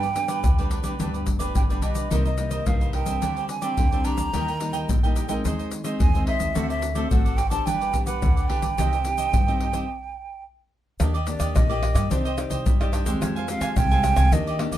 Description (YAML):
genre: samba and choro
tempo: 108 BPM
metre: 4/4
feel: straight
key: C minor, Eb major from 11.0 s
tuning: A4 = 441 Hz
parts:
  - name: breathy hollow jazz flute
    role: melody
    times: 0.0-14.8 s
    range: C5 to Bb5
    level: -28 LUFS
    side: right 4 dB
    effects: none
  - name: cavaquinho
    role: accompaniment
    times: 0.0-14.8 s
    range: D4 to Ab5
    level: -32 LUFS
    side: right 4 dB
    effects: none
  - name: nylon-string guitar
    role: accompaniment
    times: 0.0-14.8 s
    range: G2 to D5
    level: -30 LUFS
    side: left 2 dB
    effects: none
  - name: upright bass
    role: bass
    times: 0.0-14.8 s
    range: F1 to G2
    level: -26 LUFS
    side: equal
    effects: none
  - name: tube shaker, pandeiro, surdo and tamborim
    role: percussion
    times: 0.0-14.8 s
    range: none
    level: -24 LUFS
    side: equal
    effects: none
room: moderate studio reverb, RT60 0.6 s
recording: minimal, uncompressed stereo recording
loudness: -21 LUFS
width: side -12 dB against mid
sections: 0.0-11.0 A section; 11.0-14.8 B section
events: stop 9.9-11.0; flute solo 11.0-14.8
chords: 0.0 G; 2.1 Cm7; 3.2 Gsus4/D; 4.3 Eb; 5.5 Ab/Eb; 6.6 D7; 7.7 G; 8.8 Cm; 11.0 Ebmaj7; 12.1 Cmadd9; 13.2 Fmadd9